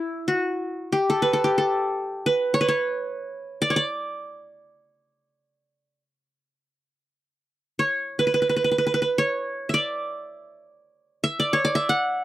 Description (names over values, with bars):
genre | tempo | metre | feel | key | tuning
Turkish makam ensemble | free time | none | none | D makam rast | A4 = 440 Hz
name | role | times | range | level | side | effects
qanun | solo | 0.0-12.2 s | E4 to F#5 | -22 LUFS | right 1 dB | none
room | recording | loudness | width
light reverb | dry, close 1970s-style studio recording | -22 LUFS | side -14 dB against mid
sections
0.0-12.2 A section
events
none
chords
none